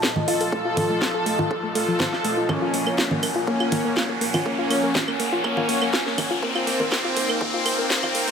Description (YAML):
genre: melodic techno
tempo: 122 BPM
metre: 4/4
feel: straight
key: unclear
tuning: A4 = 440 Hz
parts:
  - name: evolving wavetable pad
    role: sustained chords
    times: 0.0-8.3 s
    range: Eb4 to A5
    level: -31 LUFS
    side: left 1 dB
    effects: phaser, built-in reverb, sidechain pumping
  - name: soft round pluck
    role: arpeggios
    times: 0.0-8.3 s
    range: F3 to C5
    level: -28 LUFS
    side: left 1 dB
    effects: chorus, cassette tape, sidechain pumping, digital delay
  - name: fat analog bass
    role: bass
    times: 0.0-8.3 s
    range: none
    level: barely audible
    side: none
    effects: none
  - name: swarming drone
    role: drone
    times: 0.0-8.3 s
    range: Bb2 to F3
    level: -38 LUFS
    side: left 2 dB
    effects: built-in reverb, sidechain pumping
  - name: electronic kick drum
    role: drums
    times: 0.0-8.0 s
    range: none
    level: -31 LUFS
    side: left 1 dB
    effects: high-pass filter on kick
  - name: house drum kit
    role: drums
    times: 0.0-8.3 s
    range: claves, congas, hi-hat, snare drum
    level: -25 LUFS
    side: right 1 dB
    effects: sidechain pumping on perc, sidechain pumping on hats
  - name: riser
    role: sound effects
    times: 0.0-8.3 s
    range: none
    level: -30 LUFS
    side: left 1 dB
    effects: none
  - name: soft supersaw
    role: melody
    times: 0.3-8.3 s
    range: Bb3 to A4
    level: -26 LUFS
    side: equal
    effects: sidechain pumping, tape echo
  - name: clear studio violin section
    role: second line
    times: 0.3-8.3 s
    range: C4 to A4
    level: -30 LUFS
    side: left 1 dB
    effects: sidechain pumping, digital delay
room: moderate lush hall reverb, RT60 1.8 s, digital ambience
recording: high-pass filter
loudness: -20 LUFS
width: side -7 dB against mid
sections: 0.0-8.3 A section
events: build-up 0.0-8.3; riser 0.0-8.3; filter sweep on synth arpeggio sound 0.0-8.3; filter sweep on ambient pad 0.0-8.3; filter sweep 0.0-8.3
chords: 0.0 F7; 2.5 Gbadd9; 6.4 Ab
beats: 0.03 | 0.53 1.02 1.51 2.00 | 2.49 2.98 3.48 3.97 | 4.46 4.95 5.44 5.93 | 6.43 6.92 7.41 7.90